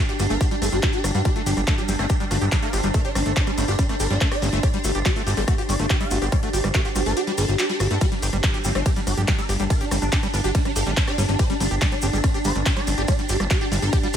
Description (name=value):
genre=psychedelic trance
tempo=142 BPM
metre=4/4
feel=straight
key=unclear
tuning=A4 = 440 Hz
part: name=swarming rave lead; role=melody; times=0.0-14.2 s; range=G3 to F5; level=-28 LUFS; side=equal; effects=chorus, phaser, sidechain pumping, tape echo
part: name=swarming drone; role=sustained chords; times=0.1-14.2 s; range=D4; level=-30 LUFS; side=left 1 dB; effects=built-in reverb, sidechain pumping
part: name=liquid acid bass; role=riff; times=0.0-14.2 s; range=G3 to G4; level=-30 LUFS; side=equal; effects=chorus, auto-pan, sidechain pumping, tape echo
part: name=deep dark ambient pad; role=texture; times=0.1-14.2 s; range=D4 to G5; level=-33 LUFS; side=right 3 dB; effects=chorus, built-in reverb, sidechain pumping
part: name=big-room dance drum kit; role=drums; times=0.1-14.2 s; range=handclaps, hi-hat, ride cymbal, rim click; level=-29 LUFS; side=left 1 dB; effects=studio reverb
part: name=maracas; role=percussion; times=0.1-14.2 s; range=none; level=-34 LUFS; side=right 1 dB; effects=none
part: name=fat analog bass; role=bass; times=0.2-14.2 s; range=G1 to G2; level=-23 LUFS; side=equal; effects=none
part: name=electronic kick drum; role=drums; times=0.4-14.0 s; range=none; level=-22 LUFS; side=equal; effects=studio reverb
part: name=metallic wobble bass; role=second line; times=1.9-4.1, 8.6-10.5 s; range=G3 to D4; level=-38 LUFS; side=equal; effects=analog chorus, sidechain pumping, high-pass filter, tape echo
room=digital ambience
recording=none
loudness=-19 LUFS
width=side -9 dB against mid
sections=0.0-14.2 A section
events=kick drops out 7.2-8.0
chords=0.0 G5